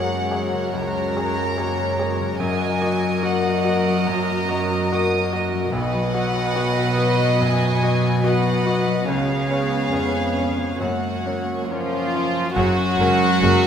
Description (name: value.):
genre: cinematic, emotional film score for orchestra.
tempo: 72 BPM.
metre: 4/4.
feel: rubato.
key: F# major.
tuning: A4 = 437 Hz.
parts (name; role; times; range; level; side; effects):
warm chamber violin section; melody; 0.0-13.5 s; C#5 to D#6; -28 LUFS; equal; none.
warm symphonic violin section; second line; 0.0-13.7 s; E#4 to D#5; -23 LUFS; left 1 dB; none.
bright grand piano; accompaniment; 0.0-13.7 s; B1 to D#5; -26 LUFS; left 2 dB; none.
dark symphonic viola section; accompaniment; 0.0-13.5 s; F#3 to G#4; -29 LUFS; right 1 dB; none.
concert harp; arpeggios; 0.0-13.7 s; F#2 to D#5; -28 LUFS; left 9 dB; none.
warm symphonic cello section; bass; 0.0-13.7 s; E#2 to F#3; -25 LUFS; right 4 dB; none.
warm French horn section; sustained chords; 11.7-13.7 s; C#4; -28 LUFS; left 3 dB; none.
dark symphonic double bass section; bass; 12.6-13.5 s; F#1; -24 LUFS; right 3 dB; none.
room: moderate scoring stage reverb, RT60 2.1 s.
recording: none.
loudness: -18 LUFS.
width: side -8 dB against mid.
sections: 0.0-12.6 A section; 12.6-13.7 A section.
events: none.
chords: 0.0 F#add9; 2.4 D#m/F#; 5.7 B; 9.1 C#7; 10.8 F#; 12.6 F#add9.